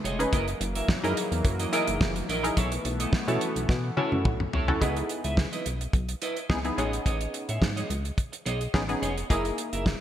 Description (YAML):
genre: early-eighties boogie funk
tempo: 107 BPM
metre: 4/4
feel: straight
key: C# minor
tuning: A4 = 441 Hz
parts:
  - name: chorused pulse-width pad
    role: sustained chords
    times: 0.0-4.8 s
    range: C#3 to B3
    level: -35 LUFS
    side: left 1 dB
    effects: none
  - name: clean electric guitar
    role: riff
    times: 0.0-9.9 s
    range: E4 to E5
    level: -33 LUFS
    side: right 2 dB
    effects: analog chorus
  - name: chorused synth bass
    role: bass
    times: 0.0-9.9 s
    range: E#1 to B2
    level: -31 LUFS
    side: equal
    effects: none
  - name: damped 70s drum kit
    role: drums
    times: 0.1-10.0 s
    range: hi-hat, kick drum, snare drum, toms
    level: -28 LUFS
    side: equal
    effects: gated reverb
  - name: funky polysynth comp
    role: accompaniment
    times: 0.2-10.0 s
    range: A#3 to B4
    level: -30 LUFS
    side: left 1 dB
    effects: chorus
room: moderate lush hall reverb, RT60 1.7 s, small room ambience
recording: bright 1980s-style digital production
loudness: -25 LUFS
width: side -11 dB against mid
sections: 0.0-4.8 A section; 4.8-10.0 B section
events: drum fill 3.7-4.8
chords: 0.3 F#13; 2.6 B9sus4; 4.8 C#m9; 6.8 Amaj9#11; 9.3 F#13